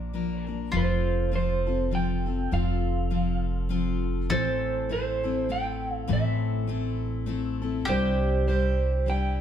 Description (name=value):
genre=acoustic folk duo or small band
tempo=101 BPM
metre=3/4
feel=swing 58% on 8ths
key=unclear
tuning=A4 = 440 Hz
part: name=electric guitar through a small old amp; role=melody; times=0.0-9.4 s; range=C5 to G5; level=-30 LUFS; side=right 5 dB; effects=tremolo
part: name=picked steel-string acoustic guitar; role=accompaniment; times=0.0-9.4 s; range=A2 to Bb4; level=-29 LUFS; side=left 5 dB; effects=none
part: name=upright bass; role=bass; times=0.0-9.4 s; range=F1 to C2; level=-28 LUFS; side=right 1 dB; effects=none
part: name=mandolin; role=second line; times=0.7-9.4 s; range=F4 to A4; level=-33 LUFS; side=equal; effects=none
room=moderate studio reverb, RT60 0.7 s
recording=heard from further back in the room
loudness=-24 LUFS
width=side -9 dB against mid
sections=0.7-9.4 A section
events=none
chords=0.0 Bb; 0.7 F; 4.3 Am; 7.9 Cadd9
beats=0.14 | 0.73 1.33 1.92 | 2.52 3.12 3.71 | 4.31 4.90 5.50 | 6.09 6.69 7.29 | 7.88 8.48 9.07